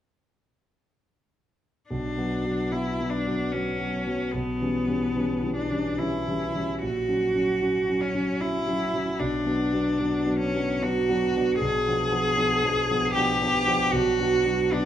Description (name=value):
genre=classical, romantic duo for cello and grand piano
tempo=70-79 BPM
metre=3/4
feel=rubato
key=B minor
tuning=A4 = 444 Hz
part: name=rich cello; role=melody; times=1.9-14.9 s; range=B3 to G#4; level=-25 LUFS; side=equal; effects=none
part: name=warm concert grand piano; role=accompaniment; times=1.9-14.9 s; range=A#1 to D4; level=-27 LUFS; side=equal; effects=none
room=wet recital hall reverb, RT60 1.5 s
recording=minimal, uncompressed stereo recording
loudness=-23 LUFS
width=side -10 dB against mid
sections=1.9-14.9 A section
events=none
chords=1.9 Bm; 4.4 C#m7b5/B; 6.8 F#/A#; 9.2 Bm; 11.6 Bdim7; 13.9 Bm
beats=| 1.91 2.73 3.54 | 4.35 5.17 5.99 | 6.83 7.63 8.41 | 9.19 9.98 10.82 | 11.61 12.38 13.16 | 13.93 14.72